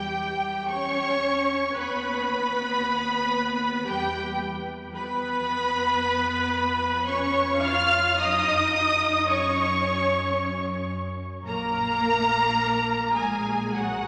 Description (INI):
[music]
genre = classical, slow romantic movement for string orchestra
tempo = 55 BPM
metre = 3/4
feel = rubato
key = F# major from 5.0 s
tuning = A4 = 440 Hz
[part]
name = rich studio violin section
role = melody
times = 0.0-14.1 s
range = F#5 to E#6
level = -29 LUFS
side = equal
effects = none
[part]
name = warm studio violin section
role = second line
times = 0.0-14.1 s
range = F#5 to E#6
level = -34 LUFS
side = equal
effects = none
[part]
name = warm studio viola section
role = accompaniment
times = 0.0-14.1 s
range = F#4 to E#5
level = -30 LUFS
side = equal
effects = none
[part]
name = dark studio double bass section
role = bass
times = 0.0-14.1 s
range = A#1 to F#2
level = -37 LUFS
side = equal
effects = none
[part]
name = warm studio cello section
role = bass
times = 0.0-14.1 s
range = F#3 to E#4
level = -34 LUFS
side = equal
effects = none
[sound]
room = wet church reverb, RT60 3.3 s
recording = none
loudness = -25 LUFS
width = mono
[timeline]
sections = 0.0-14.1 A section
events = none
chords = 0.0 Em; 1.8 B/D#; 3.9 Em; 5.0 C#7/E#; 8.2 F#5; 11.5 G#sus2/A#